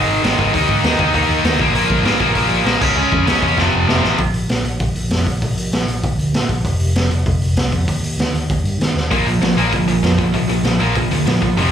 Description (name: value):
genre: punk rock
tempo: 195 BPM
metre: 4/4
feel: straight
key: unclear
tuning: A4 = 440 Hz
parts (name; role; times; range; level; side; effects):
- tight distorted guitar; riff; 0.0-4.2, 9.1-11.7 s; F2 to Eb4; -18 LUFS; left 10 dB; distortion, slapback echo
- tight distorted guitar; riff; 0.0-4.2, 9.1-11.7 s; F2 to Eb4; -19 LUFS; right 11 dB; distortion, slapback echo
- picked electric bass; bass; 0.0-11.7 s; F1 to Eb3; -20 LUFS; equal; none
- raw garage drum kit; drums; 0.2-11.6 s; crash cymbal, hi-hat, kick drum, snare drum; -20 LUFS; equal; none
room: small room ambience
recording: live gig heard through the venue's PA, club reverb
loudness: -14 LUFS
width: side -9 dB against mid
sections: 0.0-4.2 A section; 4.2-11.7 B section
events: drum fill 3.6-4.2, 9.0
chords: 0.0 Ab5; 0.5 Eb5; 1.6 Bb5; 2.8 Db; 3.6 F; 4.2 N.C.; 6.6 F5; 7.9 N.C.; 9.1 Bb5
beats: 0.23 | 0.53 0.84 1.14 1.45 | 1.75 2.06 2.36 2.66 | 2.97 3.27 3.58 3.88 | 4.19 4.50 4.80 5.11 | 5.42 5.72 6.03 6.34 | 6.65 6.95 7.26 7.57 | 7.88 8.19 8.49 8.80 | 9.11 9.42 9.73 10.03 | 10.34 10.65 10.96 11.27 | 11.57